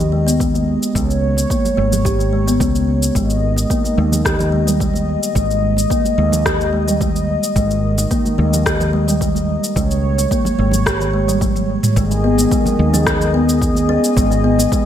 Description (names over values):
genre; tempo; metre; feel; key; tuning
organic downtempo; 109 BPM; 4/4; straight; G# harmonic minor; A4 = 438 Hz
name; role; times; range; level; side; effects
warm analog pad; sustained chords; 0.0-14.9 s; D#3 to D#5; -21 LUFS; left 1 dB; chorus, sidechain pumping
kalimba; arpeggios; 0.0-14.9 s; D#3 to G4; -18 LUFS; right 1 dB; digital delay
woody fretless electric bass; bass; 0.0-14.7 s; G#1 to D#2; -19 LUFS; equal; sidechain pumping
afro-pop drum kit; drums; 0.0-14.8 s; rim click, shaker, toms; -23 LUFS; left 1 dB; small room ambience, gated reverb
congas; percussion; 0.0-14.7 s; none; -27 LUFS; right 2 dB; none
electronic kick drum; drums; 0.4-14.8 s; none; -22 LUFS; equal; small room ambience
room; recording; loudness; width
light reverb, digital ambience; bright 1980s-style digital production; -14 LUFS; side -10 dB against mid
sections
0.0-12.0 A section; 12.0-14.9 B section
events
drum fill 11.4-12.0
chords
0.0 G#5; 1.0 C#5; 3.2 G#5; 9.8 C#5; 12.0 G#m